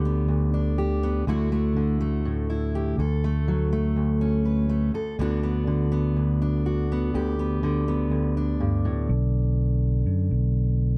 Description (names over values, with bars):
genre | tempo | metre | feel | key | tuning
indie folk with a building arrangement | 123 BPM | 4/4 | straight | unclear | A4 = 440 Hz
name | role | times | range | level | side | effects
fingerpicked steel-string acoustic guitar | accompaniment | 0.0-11.0 s | D2 to B4 | -28 LUFS | equal | none
fingered electric bass | bass | 0.0-11.0 s | B1 to F#2 | -26 LUFS | equal | none
room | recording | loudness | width
light reverb | dark, warm production | -24 LUFS | mono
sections
0.0-9.1 A section; 9.1-11.0 B section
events
none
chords
0.0 G/D; 1.3 Dadd9; 3.0 F#m/D; 5.2 Bm/D; 7.1 G/D; 9.1 Bm